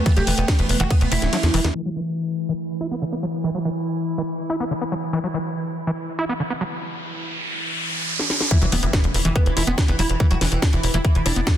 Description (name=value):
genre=psychedelic trance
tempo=142 BPM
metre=4/4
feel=straight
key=unclear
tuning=A4 = 440 Hz
part: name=evolving wavetable pad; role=sustained chords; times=0.0-11.6 s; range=E3 to E4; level=-28 LUFS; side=equal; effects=chorus, built-in reverb, sidechain pumping
part: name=tight sequencer bass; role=bass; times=0.0-1.7, 8.6-11.4 s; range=D1 to E2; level=-22 LUFS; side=equal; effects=none
part: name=oud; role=melody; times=0.1-1.7, 8.5-11.6 s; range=E3 to G4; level=-26 LUFS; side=right 2 dB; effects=phaser, sidechain pumping, digital delay
part: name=overdriven acid bass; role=riff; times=0.1-11.5 s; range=D3 to E4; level=-26 LUFS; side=moving between left 5 dB and right 4 dB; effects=distortion, auto-pan, sidechain pumping, dub echo
part: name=electronic kick drum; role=drums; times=0.1-1.0, 8.5-11.6 s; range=none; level=-18 LUFS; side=equal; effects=none
part: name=garage drum kit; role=drums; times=0.1-1.7, 8.2-11.6 s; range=hi-hat, ride cymbal, snare drum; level=-26 LUFS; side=equal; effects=none
part: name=riser and impact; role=sound effects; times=6.5-10.2 s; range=none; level=-27 LUFS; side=equal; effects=none
part: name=resonant blip pluck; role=second line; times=8.8-10.0 s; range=A3 to B3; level=-38 LUFS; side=left 4 dB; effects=none
room=light reverb, digital ambience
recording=dense, heavily limited modern master, low-pass filter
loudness=-19 LUFS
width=side -10 dB against mid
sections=0.0-1.8 A section; 1.8-8.5 B section; 8.5-11.6 A section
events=drop 0.0-1.8, 8.5-11.6; kick drops out 1.3-1.8; drum fill 1.3-1.8, 8.2-8.5; filter sweep on ambient pad 1.8-8.5; filter sweep 1.8-8.5; riser 6.5-8.5; impact 8.5-10.2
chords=0.0 E5